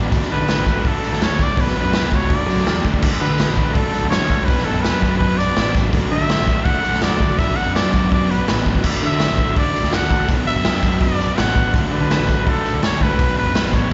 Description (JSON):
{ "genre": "indie rock", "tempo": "165 BPM", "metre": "4/4", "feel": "straight", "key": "D major", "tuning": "A4 = 441 Hz", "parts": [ { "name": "phased string machine", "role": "sustained chords", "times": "1.1-13.9 s", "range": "none", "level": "barely audible", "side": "none", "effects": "none" }, { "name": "crunchy overdriven guitar", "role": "riff", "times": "0.0-13.9 s", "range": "B2 to D4", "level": "-27 LUFS", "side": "equal", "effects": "slapback echo" }, { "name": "electric guitar through a small old amp", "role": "riff", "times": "0.0-13.9 s", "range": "B2 to D4", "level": "-31 LUFS", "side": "equal", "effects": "none" }, { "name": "picked electric bass", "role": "bass", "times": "0.0-13.9 s", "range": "A1 to D3", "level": "-24 LUFS", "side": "equal", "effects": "none" }, { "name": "tambourine", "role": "percussion", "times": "0.0-13.9 s", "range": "none", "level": "-43 LUFS", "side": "equal", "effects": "none" }, { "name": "raw garage drum kit", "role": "drums", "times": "0.1-13.9 s", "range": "crash cymbal, hi-hat, kick drum, snare drum", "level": "-22 LUFS", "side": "equal", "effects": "none" }, { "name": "growling trumpet", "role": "melody", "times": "0.3-13.9 s", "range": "A4 to F#5", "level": "-25 LUFS", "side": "equal", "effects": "slapback echo, analog delay" } ], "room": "little or no reverb", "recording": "live gig heard through the venue's PA, recital hall reverb, nothing above 7.8 kHz", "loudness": "-18 LUFS", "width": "mono", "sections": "0.0-3.0 A section; 3.0-13.9 A section", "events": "none", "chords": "0.1 D; 1.6 Bm; 2.3 D; 4.5 Bm; 5.9 D; 7.4 Bm; 8.8 D; 10.3 Bm; 11.7 D; 13.2 Bm" }